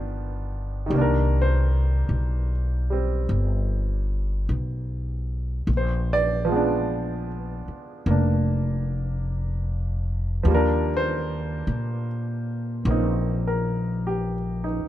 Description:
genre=jazz ballad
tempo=50 BPM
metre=4/4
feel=swing 68% on 8ths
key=C minor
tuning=A4 = 441 Hz
part: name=bright upright piano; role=accompaniment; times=0.0-14.9 s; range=Eb3 to D5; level=-26 LUFS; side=right 1 dB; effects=none
part: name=upright bass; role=bass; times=0.0-14.8 s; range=F1 to Bb2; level=-24 LUFS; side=equal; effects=none
room=little or no reverb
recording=dark, warm production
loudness=-22 LUFS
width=side -13 dB against mid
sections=0.9-14.9 A section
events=none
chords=0.0 G7b13; 0.9 Cm9; 5.7 Bb7b9; 10.5 Ebmaj7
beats=| 0.91 2.10 3.30 4.49 | 5.68 6.88 8.07 9.27 | 10.46 11.66 12.86 14.05

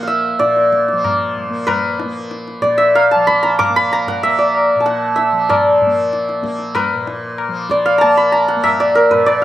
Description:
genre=indian classical, Hindustani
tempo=95 BPM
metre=4/4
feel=straight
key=Bb raga puriya dhanashri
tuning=A4 = 440 Hz
part: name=santur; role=melody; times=0.0-9.4 s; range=Bb4 to D6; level=-13 LUFS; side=equal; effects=slapback echo
part: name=tanpura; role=drone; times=0.0-9.4 s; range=Bb2 to Bb3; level=-26 LUFS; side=left 1 dB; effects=none
part: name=tabla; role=percussion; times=0.1-9.4 s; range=none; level=-23 LUFS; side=left 6 dB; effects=slapback echo
room=little or no reverb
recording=recorded outdoors, with no room sound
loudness=-12 LUFS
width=side -13 dB against mid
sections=0.0-9.4 A section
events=none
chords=none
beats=0.40 1.04 | 1.68 2.32 2.96 3.59 | 4.23 4.86 5.49 6.12 | 6.75 7.38 8.01 8.64 | 9.27

